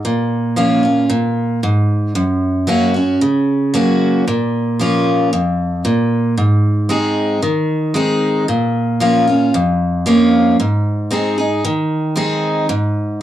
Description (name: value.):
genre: country.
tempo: 114 BPM.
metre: 4/4.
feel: straight.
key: Bb minor.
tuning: A4 = 440 Hz.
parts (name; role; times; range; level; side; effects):
picked steel-string acoustic guitar; solo; 0.0-13.2 s; F2 to Ab4; -13 LUFS; equal; none.
room: wet booth ambience, RT60 0.2 s.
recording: home recording on cassette, small room ambience.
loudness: -13 LUFS.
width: side -12 dB against mid.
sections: 0.0-13.2 A section.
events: none.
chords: 0.0 Bbm; 2.2 Gb; 4.3 Bbm; 6.4 Ab; 8.5 Bbm; 10.6 Ab.